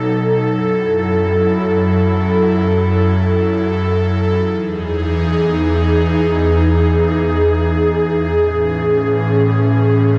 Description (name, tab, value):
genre	hip hop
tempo	free time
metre	none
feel	none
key	F# dorian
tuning	A4 = 440 Hz
part	airy breathy pad	solo	0.0-10.2 s	E2 to A4	-15 LUFS	equal	chorus, tape echo
room	light reverb, digital ambience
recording	none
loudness	-16 LUFS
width	mono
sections	0.0-10.2 A section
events	none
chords	0.0 B7; 0.5 F#m7; 4.5 Emaj7; 8.4 Amaj7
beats	free time